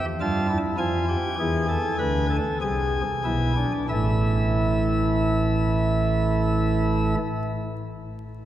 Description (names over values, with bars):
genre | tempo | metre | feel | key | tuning
classical, baroque-style 3-part fugue for pipe organ | 45-52 BPM | 4/4 | straight | A minor | A4 = 435 Hz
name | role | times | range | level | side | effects
pipe organ, sparkling flutes | solo | 0.0-7.2 s | A1 to A5 | -21 LUFS | right 1 dB | none
room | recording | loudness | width
wet cathedral reverb, RT60 4.8 s | vinyl crackle | -21 LUFS | side -12 dB against mid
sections
0.0-3.9 A section; 3.9-8.5 B section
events
slowing down 0.0-3.9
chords
0.0 Esus4; 1.4 E7; 3.9 A5